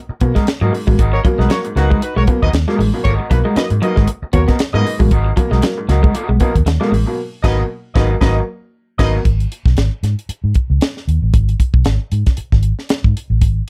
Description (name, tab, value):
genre	funk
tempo	116 BPM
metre	4/4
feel	swing 56% on 16ths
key	G# minor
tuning	A4 = 440 Hz
part	electric guitar through a small old amp	accompaniment	0.1-9.2 s	B3 to D#5	-28 LUFS	equal	warbly pitch drift
part	vintage muted fingered electric bass	bass	0.1-13.6 s	G#1 to B2	-18 LUFS	equal	none
part	electric guitar through a small old amp	riff	0.2-7.0 s	F#3 to B3	-22 LUFS	equal	tremolo
part	bright upright piano	stabs	0.2-9.2 s	G#2 to A#3	-24 LUFS	equal	none
part	tight funk drum kit	drums	0.2-13.6 s	crash cymbal, hi-hat, kick drum, snare drum	-18 LUFS	equal	none
part	mellow horn section	second line	1.1-9.1 s	D#4 to D#5	-25 LUFS	equal	none
room	little or no reverb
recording	dark, warm production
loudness	-15 LUFS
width	mono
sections	0.0-9.3 A section; 9.3-13.7 B section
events	band accent 7.2-9.3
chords	0.0 G#m9; 9.3 N.C.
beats	0.47 | 0.98 1.50 2.02 2.53 | 3.05 3.56 4.08 4.60 | 5.11 5.63 6.15 6.67 | 7.18 7.70 8.22 8.74 | 9.26 9.78 10.29 10.81 | 11.33 11.85 12.37 12.89 | 13.41